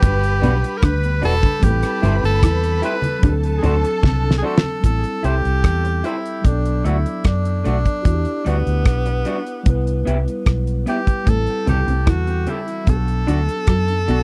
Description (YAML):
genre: lovers rock reggae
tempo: 75 BPM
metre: 4/4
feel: straight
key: A dorian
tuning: A4 = 439 Hz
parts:
  - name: breathy tenor saxophone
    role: melody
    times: 0.0-14.2 s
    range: B3 to B4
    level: -26 LUFS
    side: equal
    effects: tape echo
  - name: warm symphonic string section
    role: second line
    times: 0.0-4.8 s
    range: A4 to B5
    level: -31 LUFS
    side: equal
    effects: none
  - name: mellow tine electric piano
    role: accompaniment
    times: 0.0-14.2 s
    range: F#3 to F#5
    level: -30 LUFS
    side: equal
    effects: tape echo
  - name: electric guitar through a small old amp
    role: riff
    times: 0.0-4.3, 11.3-14.2 s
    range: E2 to F#3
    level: -30 LUFS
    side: equal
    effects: lush chorus, tape echo
  - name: vintage muted fingered electric bass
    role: bass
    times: 0.0-14.2 s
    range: E1 to F#2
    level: -22 LUFS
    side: equal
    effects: none
  - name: damped 70s drum kit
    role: drums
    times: 0.0-14.2 s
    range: hi-hat, kick drum, rim click, snare drum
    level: -18 LUFS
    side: equal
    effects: none
  - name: congas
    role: percussion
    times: 0.0-4.8, 11.3-13.1 s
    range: none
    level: -28 LUFS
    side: equal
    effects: none
  - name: electric guitar through a small old amp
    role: stabs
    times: 0.4-14.2 s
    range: G3 to C5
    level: -27 LUFS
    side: equal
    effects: none
room: little or no reverb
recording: dry, close 1970s-style studio recording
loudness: -19 LUFS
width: mono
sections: 0.0-4.8 A section; 4.8-14.2 B section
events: drum fill 4.0-4.8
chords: 0.0 Gmaj7; 1.6 Am7; 3.2 D7; 4.8 Am7; 6.4 Bm7; 8.1 Em9; 9.7 Cmaj7; 11.3 Am7; 12.9 Bm7